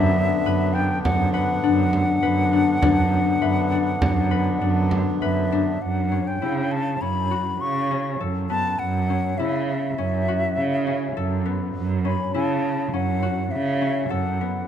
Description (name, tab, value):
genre	contemporary instrumental, chamber music in an uneven meter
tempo	101 BPM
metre	5/4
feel	straight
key	F# minor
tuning	A4 = 440 Hz
part	mellow silver concert flute	melody	0.0-14.7 s	E5 to C#6	-26 LUFS	left 2 dB	none
part	hand-pumped harmonium	sustained chords	0.0-5.8 s	D3 to D4	-29 LUFS	right 1 dB	none
part	concert harp	arpeggios	0.0-14.7 s	B3 to B4	-26 LUFS	left 8 dB	none
part	warm cello	bass	0.0-14.6 s	F#2 to C#3	-23 LUFS	right 4 dB	none
part	small celesta	texture	0.0-4.6 s	E5 to B5	-36 LUFS	left 8 dB	none
part	frame drum	percussion	0.5-5.7 s	none	-26 LUFS	right 2 dB	none
room	moderate scoring stage reverb, RT60 1.8 s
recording	none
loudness	-20 LUFS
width	side -9 dB against mid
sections	0.0-5.8 A section; 5.8-14.7 B section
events	none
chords	0.0 Bm/F#; 5.8 F#m7